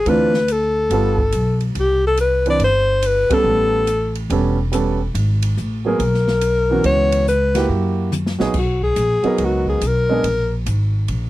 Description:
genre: jazz, small-group swing and bop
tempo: 142 BPM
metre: 4/4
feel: swing 65% on 8ths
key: unclear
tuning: A4 = 440 Hz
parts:
  - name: breathy alto saxophone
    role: melody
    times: 0.0-10.5 s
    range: F#4 to D5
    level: -18 LUFS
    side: left 2 dB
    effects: none
  - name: warm grand piano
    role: accompaniment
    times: 0.1-10.2 s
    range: E3 to B4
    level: -21 LUFS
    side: right 5 dB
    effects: none
  - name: upright bass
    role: bass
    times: 0.1-11.3 s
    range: E1 to F#2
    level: -20 LUFS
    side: equal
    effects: none
  - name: open jazz drum kit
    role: drums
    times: 0.1-11.2 s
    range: crash cymbal, hi-hat, kick drum, ride cymbal, snare drum, toms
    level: -28 LUFS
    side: equal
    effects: none
room: little or no reverb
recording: dry, close 1970s-style studio recording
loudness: -15 LUFS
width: side -16 dB against mid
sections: 0.0-8.5 A section; 8.5-11.3 B section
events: band accent 3.2; drum fill 8.1-8.5; alto saxophone solo 8.5-11.3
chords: 0.1 Dm9; 0.9 G9; 1.8 Cmaj7(no3); 3.5 A9; 5.2 G#m9; 6.8 C#m7; 7.7 F#7b9; 8.5 Bmaj7; 10.2 A#7(no3)

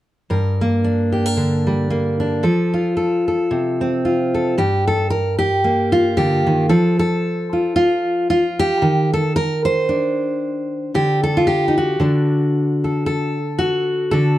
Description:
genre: folk, solo fingerstyle acoustic guitar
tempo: 113 BPM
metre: 4/4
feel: swing 56% on 8ths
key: G minor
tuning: A4 = 439 Hz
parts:
  - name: fingerpicked steel-string acoustic guitar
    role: solo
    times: 0.3-14.4 s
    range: G2 to C5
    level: -16 LUFS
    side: equal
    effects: none
room: light reverb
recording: dark, warm production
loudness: -16 LUFS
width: side -14 dB against mid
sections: 0.3-4.6 A section; 4.6-14.4 B section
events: none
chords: 0.3 Gm; 2.4 F; 4.6 Gm; 6.7 N.C.; 8.8 Cmadd9/Eb; 10.9 N.C.; 12.0 D

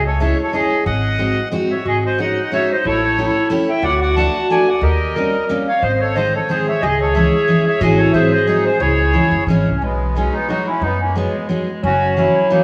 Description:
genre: musette waltz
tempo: 181 BPM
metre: 3/4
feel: swing 55% on 8ths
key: C# harmonic minor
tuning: A4 = 441 Hz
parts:
  - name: accordion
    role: melody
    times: 0.0-12.6 s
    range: G#3 to A5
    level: -21 LUFS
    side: equal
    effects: none
  - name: upright bass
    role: bass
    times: 0.0-12.3 s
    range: F#1 to F#2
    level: -23 LUFS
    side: equal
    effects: none
  - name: picked steel-string acoustic guitar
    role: accompaniment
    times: 0.2-12.6 s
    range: D#3 to G4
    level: -22 LUFS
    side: equal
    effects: none
  - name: clear clarinet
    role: second line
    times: 1.9-12.6 s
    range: F#3 to B#4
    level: -23 LUFS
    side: equal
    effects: none
room: wet scoring stage reverb, RT60 1.8 s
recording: small room ambience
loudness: -17 LUFS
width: mono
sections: 0.0-9.8 A section; 9.8-12.6 B section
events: none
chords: 0.0 C#madd9; 0.9 G#7; 2.9 A7; 3.8 D6; 4.8 D#7; 5.8 G#; 6.8 C#madd9; 7.8 C#m/G#; 8.1 G#7; 8.8 C#madd9; 9.8 B6; 11.8 F#7

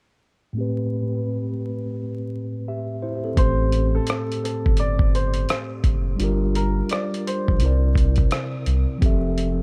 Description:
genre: lo-fi hip hop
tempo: 85 BPM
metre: 4/4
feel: swing 62% on 16ths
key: A minor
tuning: A4 = 440 Hz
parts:
  - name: mellow tine electric piano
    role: accompaniment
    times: 0.5-9.6 s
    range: A2 to E5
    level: -28 LUFS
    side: equal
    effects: cassette tape, low-pass filter, analog delay
  - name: dark upright piano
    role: melody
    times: 3.4-7.8 s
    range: A4 to D5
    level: -32 LUFS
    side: equal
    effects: analog delay
  - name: soft dub sub bass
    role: bass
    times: 3.4-9.6 s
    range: F1 to C2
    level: -24 LUFS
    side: equal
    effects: none
  - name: lo-fi sampler-style drum kit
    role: drums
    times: 3.4-9.6 s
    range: hi-hat, kick drum, rim click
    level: -23 LUFS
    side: equal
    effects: none
room: digital ambience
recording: echo-heavy mix, vinyl crackle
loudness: -23 LUFS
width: mono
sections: 0.5-3.4 A section; 3.4-9.6 B section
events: filter sweep on tine electric piano 0.5-3.4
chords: 0.5 Am9; 3.4 Am7; 6.2 Gm7; 7.6 C7; 9.0 Fmaj9

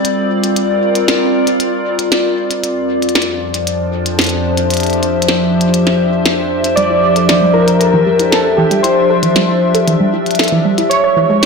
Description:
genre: IDM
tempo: 116 BPM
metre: 4/4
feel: straight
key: unclear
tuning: A4 = 442 Hz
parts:
  - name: glassy FM pad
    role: sustained chords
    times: 0.0-11.5 s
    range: F2 to E5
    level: -14 LUFS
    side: left 1 dB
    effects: ensemble chorus, built-in reverb
  - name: glitchy drum kit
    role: drums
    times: 0.0-11.5 s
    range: hi-hat, snare drum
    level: -17 LUFS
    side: equal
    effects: small room ambience, soft clipping on snare
  - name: warbly lo-fi synth keys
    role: melody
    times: 6.8-11.5 s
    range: G4 to D5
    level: -13 LUFS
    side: equal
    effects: chorus, dub echo
  - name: warbly dusty pluck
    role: arpeggios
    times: 6.8-11.5 s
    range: E3 to C#5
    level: -17 LUFS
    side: right 3 dB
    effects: chorus, ping-pong delay
room: moderate plate reverb, RT60 1.2 s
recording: blown-out, overdriven recording, overdrive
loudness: -11 LUFS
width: side -4 dB against mid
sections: 0.0-11.5 A section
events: none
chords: 0.0 Gm; 2.6 F5; 6.8 Am7 (rootless); 10.9 C#m

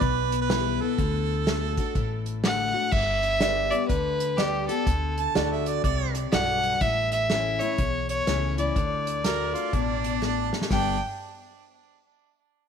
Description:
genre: honky-tonk and classic country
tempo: 123 BPM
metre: 4/4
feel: swing 63% on 8ths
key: G major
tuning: A4 = 439 Hz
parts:
  - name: clear harmonica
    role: second line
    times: 0.0-6.1, 9.2-11.0 s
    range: D4 to A5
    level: -30 LUFS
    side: right 10 dB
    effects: tape echo
  - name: picked steel-string acoustic guitar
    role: accompaniment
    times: 0.0-11.0 s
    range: E2 to G4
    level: -30 LUFS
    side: left 13 dB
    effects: none
  - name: upright bass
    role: bass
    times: 0.0-11.0 s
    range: G1 to D2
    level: -30 LUFS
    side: equal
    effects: none
  - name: unplugged drum kit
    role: drums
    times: 0.0-10.8 s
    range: crash cymbal, hi-hat, kick drum, snare drum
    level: -29 LUFS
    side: equal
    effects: none
  - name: clear fiddle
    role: melody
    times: 2.4-11.0 s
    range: G4 to G5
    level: -26 LUFS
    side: equal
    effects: none
  - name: dark concert grand piano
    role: accompaniment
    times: 3.4-6.8 s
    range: F#4 to D5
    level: -31 LUFS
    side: right 11 dB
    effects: none
room: light reverb, small room reverb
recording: 1960s-style stereo with parts hard left and right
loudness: -23 LUFS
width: side -7 dB against mid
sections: 0.0-2.9 A section; 2.9-10.7 B section; 10.7-12.7 C section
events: harmonica solo 0.0-2.9; drum fill 10.2-10.7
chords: 0.0 Em; 1.0 D; 2.9 G; 4.9 D; 6.8 A; 8.8 D; 10.7 G

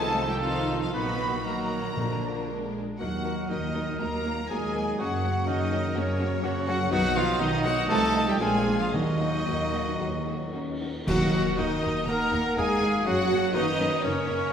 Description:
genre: classical, dramatic, fast romantic movement for symphony orchestra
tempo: 110-126 BPM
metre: 4/4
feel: rubato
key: Eb minor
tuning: A4 = 442 Hz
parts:
  - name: rich studio violin section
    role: melody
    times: 0.0-14.5 s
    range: Db5 to Cb6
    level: -34 LUFS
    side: left 3 dB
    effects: none
  - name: mellow large flute ensemble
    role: second line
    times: 0.0-14.5 s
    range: Bb4 to Cb6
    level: -35 LUFS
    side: left 1 dB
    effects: none
  - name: warm cor anglais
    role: second line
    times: 0.0-14.5 s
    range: Db4 to Eb5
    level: -34 LUFS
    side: equal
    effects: none
  - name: warm symphonic violin section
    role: second line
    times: 0.0-14.5 s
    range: Bb3 to Bb4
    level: -37 LUFS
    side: left 2 dB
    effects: none
  - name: rich symphonic viola section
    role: accompaniment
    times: 0.0-14.5 s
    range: D3 to Bb4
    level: -34 LUFS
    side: equal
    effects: none
  - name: mellow French horn section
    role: sustained chords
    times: 0.0-14.5 s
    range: Gb3 to F4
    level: -36 LUFS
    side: left 2 dB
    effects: none
  - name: warm trombone section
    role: sustained chords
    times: 0.0-10.8 s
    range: Bb2 to Gb3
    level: -36 LUFS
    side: right 1 dB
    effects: none
  - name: mellow trumpet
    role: stabs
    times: 0.0-14.5 s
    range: Db4 to Cb5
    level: -32 LUFS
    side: right 1 dB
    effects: none
  - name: rich symphonic cello section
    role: bass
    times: 0.0-14.5 s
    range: Db3 to Cb4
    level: -32 LUFS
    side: right 1 dB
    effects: none
  - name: warm studio double bass section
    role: bass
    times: 0.0-14.4 s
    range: Bb1 to Gb2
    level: -33 LUFS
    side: right 2 dB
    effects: none
  - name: timpani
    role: percussion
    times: 2.0-2.7, 8.9-11.8 s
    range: Bb2 to Eb3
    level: -32 LUFS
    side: equal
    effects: none
  - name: cymbal swell, clash cymbals and concert bass drum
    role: percussion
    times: 6.9-12.0 s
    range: none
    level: -38 LUFS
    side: equal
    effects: none
room: wet concert hall reverb, RT60 1.7 s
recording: none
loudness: -24 LUFS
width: side -8 dB against mid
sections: 0.0-11.1 A section; 11.1-14.5 B section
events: band accent 11.1-11.6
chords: 0.0 F7/C; 0.9 Ebm/Bb; 2.0 Bb; 3.0 Ebm; 5.0 Gb; 6.9 B; 7.9 F7/C; 8.4 Bb7; 8.9 Ebm; 13.1 Gb

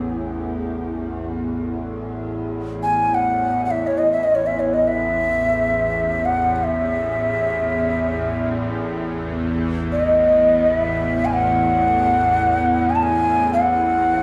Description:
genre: world meditative, free-time meditation music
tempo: free time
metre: none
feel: none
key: unclear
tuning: A4 = 439 Hz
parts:
  - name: evolving wavetable pad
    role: drone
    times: 0.0-14.2 s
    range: A1 to E2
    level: -25 LUFS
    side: equal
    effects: ensemble chorus, built-in reverb
  - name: mellow hollow Native American-style cedar flute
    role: melody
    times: 2.8-14.2 s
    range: C#5 to A5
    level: -20 LUFS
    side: equal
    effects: diffuse ambient delay
room: wet studio reverb, RT60 0.5 s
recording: none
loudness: -20 LUFS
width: mono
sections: 0.0-1.6 A section; 1.6-14.2 A section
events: none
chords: none

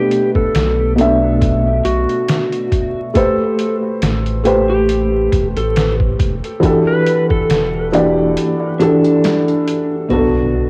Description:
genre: trip hop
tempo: 69 BPM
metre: 4/4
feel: swing 55% on 16ths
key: B phrygian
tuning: A4 = 441 Hz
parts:
  - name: clean lap steel guitar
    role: melody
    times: 0.0-10.7 s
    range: D4 to B4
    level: -21 LUFS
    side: equal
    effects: cassette tape, dub echo
  - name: felt-muted upright piano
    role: accompaniment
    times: 0.0-10.7 s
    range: B2 to E5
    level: -18 LUFS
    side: equal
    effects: harmonic tremolo, cassette tape, tape echo
  - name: trip hop sampler-style drum kit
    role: drums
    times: 0.1-9.9 s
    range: hi-hat, kick drum, snare drum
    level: -21 LUFS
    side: equal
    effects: studio reverb, cassette tape
  - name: round analog bass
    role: bass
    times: 0.5-10.7 s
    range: E1 to B1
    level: -22 LUFS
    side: equal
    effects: none
  - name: impact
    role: sound effects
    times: 10.1-10.7 s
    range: none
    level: -27 LUFS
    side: equal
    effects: none
room: light reverb, digital ambience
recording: home recording on cassette, vinyl crackle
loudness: -15 LUFS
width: mono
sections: 0.0-10.1 A section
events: kick drops out 8.4-10.1; impact 10.1-10.7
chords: 0.0 Bm7; 3.1 Am9; 6.6 Em11; 10.1 Bm7

